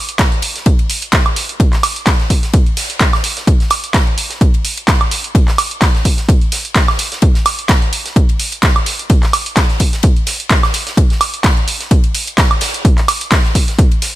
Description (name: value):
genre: house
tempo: 128 BPM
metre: 4/4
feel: swing 55% on 16ths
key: none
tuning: none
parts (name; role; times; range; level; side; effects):
- punchy analog drum machine; drums; 0.1-14.1 s; handclaps, hi-hat, woodblock; -16 LUFS; right 2 dB; none
- electronic kick drum; drums; 0.2-13.9 s; none; -11 LUFS; equal; none
- gated 80s drum kit; drums; 0.2-14.1 s; ride cymbal, snare drum; -25 LUFS; left 2 dB; high-pass filter on cymbals, high-pass filter on snare, high-pass filter on room
room: studio reverb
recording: none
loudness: -11 LUFS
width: side -16 dB against mid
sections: 0.0-14.2 A section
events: none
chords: none